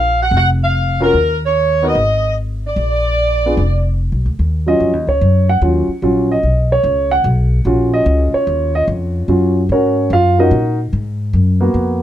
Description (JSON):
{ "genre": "jazz, big band swing", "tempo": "147 BPM", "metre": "4/4", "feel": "swing 66% on 8ths", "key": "Eb minor", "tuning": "A4 = 441 Hz", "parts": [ { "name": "mellow saxophone section", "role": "melody", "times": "0.0-4.0 s", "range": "Bb4 to Gb5", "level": "-15 LUFS", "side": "right 1 dB", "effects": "none" }, { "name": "upright bass", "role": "bass", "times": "0.0-12.0 s", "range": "F1 to Bb2", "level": "-16 LUFS", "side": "left 1 dB", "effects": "none" }, { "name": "warm upright piano", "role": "accompaniment", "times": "1.0-12.0 s", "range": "Gb3 to Gb5", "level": "-15 LUFS", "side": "right 1 dB", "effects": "none" } ], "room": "little or no reverb", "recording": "close, detailed microphones", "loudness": "-12 LUFS", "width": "side -11 dB against mid", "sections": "0.0-4.4 A section; 4.4-12.0 B section", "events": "upright piano solo 4.4-12.0", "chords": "0.0 Bb5; 1.1 Ebm7; 2.0 Ab5; 2.8 Bb(b9); 4.4 Ebm7; 10.9 Abm7" }